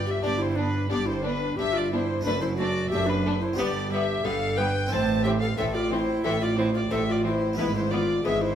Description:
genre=classical, baroque-style concerto movement with solo episodes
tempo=90 BPM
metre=4/4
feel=straight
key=unclear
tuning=A4 = 440 Hz
part: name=warm chamber violin section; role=melody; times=0.0-8.6 s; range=B4 to A5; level=-30 LUFS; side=left 2 dB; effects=none
part: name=harpsichord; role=accompaniment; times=0.0-8.6 s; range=F#2 to G4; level=-37 LUFS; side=right 1 dB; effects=none
part: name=rich chamber cello section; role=bass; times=0.0-8.6 s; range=F#2 to A2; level=-31 LUFS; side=right 3 dB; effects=none
part: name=rich chamber double bass section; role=bass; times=0.0-8.6 s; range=F#1 to A1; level=-31 LUFS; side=right 2 dB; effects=none
part: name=mellow hollow tenor recorder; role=melody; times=0.1-8.6 s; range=D4 to C5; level=-28 LUFS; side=left 1 dB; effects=none
part: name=rich chamber violin section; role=second line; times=0.2-8.3 s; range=B3 to D4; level=-34 LUFS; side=left 2 dB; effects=none
part: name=dark chamber viola section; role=accompaniment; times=0.2-8.3 s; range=E3 to B3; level=-36 LUFS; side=right 1 dB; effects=none
room=wet recital hall reverb, RT60 1.3 s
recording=minimal, uncompressed stereo recording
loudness=-23 LUFS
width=side -9 dB against mid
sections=0.0-8.6 A section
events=none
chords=0.0 G; 2.2 D/F#; 3.6 G; 4.9 Am; 7.6 E/G#

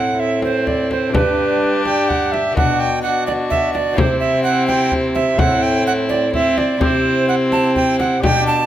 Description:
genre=classical, renaissance-style consort dance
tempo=127 BPM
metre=3/4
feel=straight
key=unclear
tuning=A4 = 440 Hz
part: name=rich violin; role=melody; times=0.0-8.7 s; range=E4 to G4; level=-27 LUFS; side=left 4 dB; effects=none
part: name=bright tenor recorder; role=second line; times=0.0-8.7 s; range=B4 to A5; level=-18 LUFS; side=right 4 dB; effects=none
part: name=lute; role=accompaniment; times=0.0-8.7 s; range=G2 to B4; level=-26 LUFS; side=left 5 dB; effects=none
part: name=warm viola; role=accompaniment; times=0.0-8.7 s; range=C4 to D4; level=-21 LUFS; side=left 1 dB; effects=none
part: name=mellow bassoon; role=bass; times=0.0-8.7 s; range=G2 to C3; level=-22 LUFS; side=right 1 dB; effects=none
part: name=frame drum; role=percussion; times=0.4-8.5 s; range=none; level=-22 LUFS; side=left 2 dB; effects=none
room=moderate recital hall reverb, RT60 1.4 s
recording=close, detailed microphones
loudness=-14 LUFS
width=side -12 dB against mid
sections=0.0-8.7 A section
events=none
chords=0.0 Am; 1.1 G; 2.6 Bm; 4.0 C; 5.4 Am; 6.8 C

